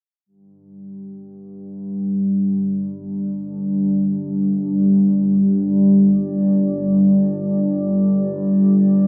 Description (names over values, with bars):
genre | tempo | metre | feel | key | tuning
dark ambient drone | free time | none | none | unclear | A4 = 440 Hz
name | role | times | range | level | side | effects
deep dark ambient pad | sustained chords | 1.8-9.1 s | G3 to D5 | -19 LUFS | equal | chorus, built-in reverb
analog drone | drone | 0.8-9.1 s | G1 to G2 | -32 LUFS | equal | chorus
room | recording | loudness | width
wet huge ambient reverb, RT60 8.4 s | worn, warbling old tape, cassette tape, warbly pitch drift, small speaker sound | -18 LUFS | mono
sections
0.3-9.1 A section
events
fade-in on synth drone 0.3-9.1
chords
0.3 G5